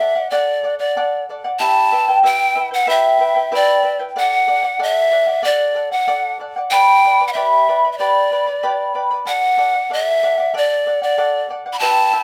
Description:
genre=andean folk, Andean ensemble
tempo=94 BPM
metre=4/4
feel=straight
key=unclear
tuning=A4 = 439 Hz
part: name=breathy pan flute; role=melody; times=0.0-12.2 s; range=D5 to B5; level=-18 LUFS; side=equal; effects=none
part: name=charango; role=accompaniment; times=0.0-12.2 s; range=E4 to B5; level=-21 LUFS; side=equal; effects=none
room=light reverb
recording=none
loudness=-16 LUFS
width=mono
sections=0.0-12.2 A section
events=none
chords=0.0 D; 1.6 Em; 4.1 D; 6.7 G; 9.3 D

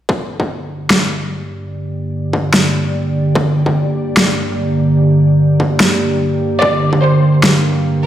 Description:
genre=heavy wobble dubstep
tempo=147 BPM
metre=4/4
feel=half-time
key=G minor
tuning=A4 = 441 Hz
part: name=evolving wavetable pad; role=sustained chords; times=0.7-8.1 s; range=G2 to F5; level=-14 LUFS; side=right 1 dB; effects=chorus, built-in reverb, vintage 12-bit sampler grit, sidechain pumping
part: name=electronic kick drum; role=drums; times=0.1-7.0 s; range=none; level=-18 LUFS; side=equal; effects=distortion, high-pass filter on kick
part: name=electronic snare drum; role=drums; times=0.9-7.5 s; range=none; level=-14 LUFS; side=equal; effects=none
part: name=clear studio violin section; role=melody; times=6.6-7.3 s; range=C5 to D5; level=-17 LUFS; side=left 1 dB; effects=digital delay
room=moderate digital room reverb, RT60 1.2 s, digital ambience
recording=played on a big sound system in a bare room, stone room reverb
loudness=-12 LUFS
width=side -11 dB against mid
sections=0.1-8.1 A section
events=filter sweep on ambient pad 0.1-8.1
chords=0.1 Gm

